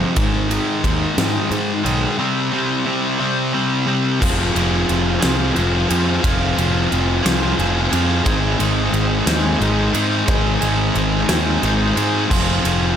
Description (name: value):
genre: quiet-loud alternative rock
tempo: 59 BPM (dotted quarters)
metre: 6/8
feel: straight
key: F minor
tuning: A4 = 440 Hz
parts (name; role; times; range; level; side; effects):
- thick fuzz guitar; riff; 0.0-13.0 s; F2 to Ab4; -18 LUFS; left 1 dB; distortion
- fuzz picked electric bass; bass; 0.0-12.9 s; F1 to Ab2; -21 LUFS; equal; overdrive
- huge arena drum kit; drums; 0.2-12.8 s; crash cymbal, kick drum, ride cymbal, snare drum; -23 LUFS; equal; none
room: light reverb, studio reverb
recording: none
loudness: -16 LUFS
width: side -9 dB against mid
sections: 0.0-4.2 A section; 4.2-13.0 B section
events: none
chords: 0.2 Ab5; 2.2 C5; 4.2 Fm; 8.3 Ab; 12.3 Fm